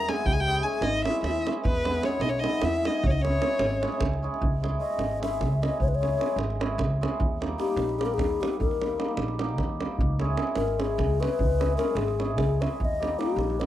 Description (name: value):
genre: balkan folk, Balkan wedding band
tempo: 301 BPM (eighths)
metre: 7/8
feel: straight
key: C# dorian sharp4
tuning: A4 = 440 Hz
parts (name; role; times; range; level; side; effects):
- warm violin; melody; 0.0-4.0 s; B4 to A#5; -28 LUFS; left 1 dB; none
- breathy bass ocarina; second line; 0.0-13.7 s; B3 to E5; -29 LUFS; left 6 dB; none
- cimbalom; accompaniment; 0.0-13.7 s; G3 to G#4; -32 LUFS; right 2 dB; none
- upright bass; bass; 0.0-13.7 s; G#1 to E2; -29 LUFS; equal; none
- davul; percussion; 0.1-13.7 s; none; -30 LUFS; right 2 dB; none
room: little or no reverb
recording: dry, close 1970s-style studio recording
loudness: -24 LUFS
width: side -13 dB against mid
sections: 0.0-4.4 A section; 4.4-13.7 B section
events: ocarina solo 4.4-13.7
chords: 0.3 C#m; 1.6 E; 3.0 C#m; 7.2 D#; 10.0 C#m; 12.8 D#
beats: 0.06 | 0.26 0.46 0.66 0.86 1.05 1.25 1.45 | 1.65 1.85 2.04 2.24 2.44 2.64 2.84 | 3.04 3.23 3.43 3.63 3.83 4.03 4.23 | 4.42 4.62 4.82 5.02 5.22 5.42 5.62 | 5.82 6.02 6.21 6.42 6.61 6.81 7.01 | 7.21 7.41 7.61 7.81 8.01 8.21 8.41 | 8.61 8.81 9.01 9.21 9.41 9.61 9.81 | 10.01 10.21 10.41 10.61 10.80 11.01 11.21 | 11.40 11.61 11.80 12.01 12.21 12.40 12.61 | 12.80 13.01 13.21 13.40 13.61